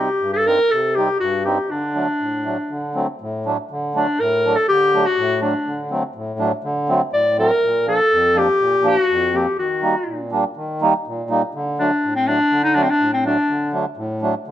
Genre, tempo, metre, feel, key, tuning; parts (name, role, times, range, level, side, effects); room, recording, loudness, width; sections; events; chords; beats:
klezmer; 122 BPM; 4/4; straight; D phrygian dominant; A4 = 440 Hz
warm clarinet; melody; 0.0-13.7 s; C4 to D5; -17 LUFS; left 1 dB
mellow accordion; accompaniment; 0.0-14.5 s; F2 to Eb4; -22 LUFS; right 1 dB
light reverb; close, detailed microphones; -16 LUFS; side -12 dB against mid
0.0-3.7 A section; 3.7-14.5 B section
0.0 Cm; 1.7 D; 7.6 Bb; 9.6 Eb; 11.5 D
0.22 0.71 1.21 | 1.70 2.20 2.70 3.19 | 3.69 4.18 4.68 5.17 | 5.67 6.16 6.65 7.14 | 7.63 8.12 8.61 9.10 | 9.59 10.08 10.57 11.05 | 11.54 12.03 12.52 13.01 | 13.49 13.98 14.47